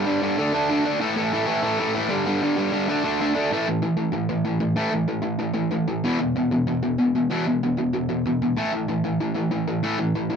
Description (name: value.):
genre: punk.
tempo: 190 BPM.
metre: 4/4.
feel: straight.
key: unclear.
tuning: A4 = 440 Hz.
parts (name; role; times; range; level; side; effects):
distorted electric guitar; solo; 0.0-10.4 s; E2 to D4; -21 LUFS; equal; distortion.
room: moderate small room ambience, RT60 0.5 s.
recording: none.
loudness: -21 LUFS.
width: side -7 dB against mid.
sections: 0.0-3.5 A section; 3.5-10.4 B section.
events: none.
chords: 0.4 D5; 1.0 A5; 2.1 G5; 2.9 D5; 3.5 A5; 6.0 E5; 8.6 A5.